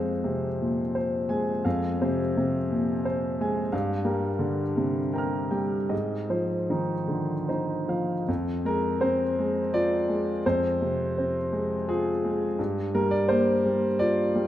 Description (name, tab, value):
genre	neoclassical minimalist piano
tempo	74-88 BPM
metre	3/4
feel	rubato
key	F dorian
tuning	A4 = 442 Hz
part	warm concert grand piano	solo	0.0-14.5 s	F2 to F6	-24 LUFS	equal	none
room	moderate lush hall reverb, RT60 2.3 s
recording	rough home demo mix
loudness	-24 LUFS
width	side -12 dB against mid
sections	0.0-8.3 A section; 8.3-14.5 B section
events	none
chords	0.0 Fm; 3.7 Gm7; 5.9 Ab6; 8.3 Fm; 12.6 Gm7